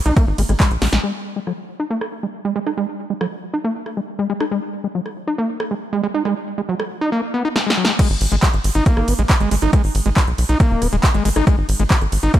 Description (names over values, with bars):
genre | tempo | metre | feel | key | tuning
psychedelic trance | 138 BPM | 4/4 | straight | G# minor | A4 = 436 Hz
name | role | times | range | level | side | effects
overdriven acid bass | riff | 0.1-12.4 s | F#3 to D#4 | -21 LUFS | moving between left 7 dB and right 7 dB | distortion, auto-pan, sidechain pumping, tape echo
tight sequencer bass | bass | 0.1-1.0, 8.1-12.3 s | D#1 to B1 | -18 LUFS | equal | none
big-room dance drum kit | drums | 0.1-12.4 s | crash cymbal, handclaps, hi-hat, ride cymbal, rim click, snare drum | -22 LUFS | right 1 dB | low-pass filter on hats, low-pass filter on cymbals, low-pass filter on snare, low-pass filter on room
electronic kick drum | drums | 0.2-0.7, 8.0-12.4 s | none | -15 LUFS | equal | none
room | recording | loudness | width
light reverb, digital ambience | none | -17 LUFS | side -12 dB against mid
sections
0.0-1.0 A section; 1.0-8.0 B section; 8.0-12.4 A section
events
drop 0.0-1.0, 8.0-12.4; drum fill 0.8, 7.6-8.0; filter sweep on drum 1.0-8.0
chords
0.0 G#5